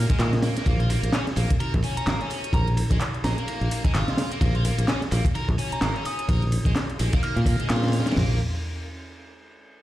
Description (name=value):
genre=breakbeat, breaks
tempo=128 BPM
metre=4/4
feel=swing 57% on 16ths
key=Bb minor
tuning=A4 = 439 Hz
part: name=soft synth bell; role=melody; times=0.0-7.6 s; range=Bb5 to F6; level=-35 LUFS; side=right 1 dB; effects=chorus, phaser, small speaker sound, vintage 12-bit sampler grit, ping-pong delay
part: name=biting overdriven guitar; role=riff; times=0.0-8.4 s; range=Ab3 to Bb4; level=-32 LUFS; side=equal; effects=ping-pong delay
part: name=fingered electric bass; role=bass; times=0.0-8.4 s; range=Ab1 to Bb2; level=-24 LUFS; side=equal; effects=tube saturation
part: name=crunchy breakbeat drum kit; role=drums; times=0.1-8.3 s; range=hi-hat, kick drum, ride cymbal, snare drum, toms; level=-25 LUFS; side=equal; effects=none
part: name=house drum kit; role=drums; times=0.1-8.1 s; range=handclaps, hi-hat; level=-33 LUFS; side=equal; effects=overdrive
room=little or no reverb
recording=played on a big sound system in a bare room, stone room reverb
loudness=-21 LUFS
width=side -15 dB against mid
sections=0.0-8.2 A section; 8.2-9.8 B section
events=drop 0.0-8.2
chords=0.0 Bbm7; 8.2 N.C.